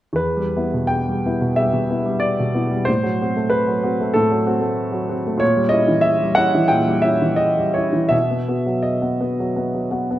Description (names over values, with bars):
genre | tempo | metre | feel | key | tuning
classical, romantic character piece for solo piano | 79-97 BPM | 4/4 | rubato | E minor | A4 = 440 Hz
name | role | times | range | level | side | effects
warm grand piano | solo | 0.1-10.2 s | E2 to G5 | -17 LUFS | equal | none
room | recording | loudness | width
moderate scoring stage reverb, RT60 1.6 s | close, detailed microphones | -17 LUFS | side -14 dB against mid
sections
0.2-10.2 A section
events
none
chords
0.2 Em; 2.9 F#dim/A; 5.4 A#dim7; 8.1 B